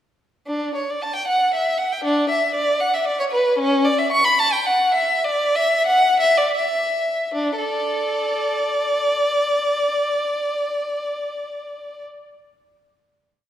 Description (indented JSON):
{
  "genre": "classical, baroque-style suite movement for unaccompanied violin",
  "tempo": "73-123 BPM",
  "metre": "3/4",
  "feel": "rubato",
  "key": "D major",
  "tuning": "A4 = 440 Hz",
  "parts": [
    { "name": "rich violin", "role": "solo", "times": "0.5-12.0 s", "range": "C#4 to C#6", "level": "-18 LUFS", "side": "equal", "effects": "none" }
  ],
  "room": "wet concert hall reverb, RT60 1.8 s",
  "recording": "heard from further back in the room",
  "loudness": "-18 LUFS",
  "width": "side -11 dB against mid",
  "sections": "0.5-7.4 A section; 7.4-11.9 final chord",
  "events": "slowing down 2.8-7.4",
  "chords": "none"
}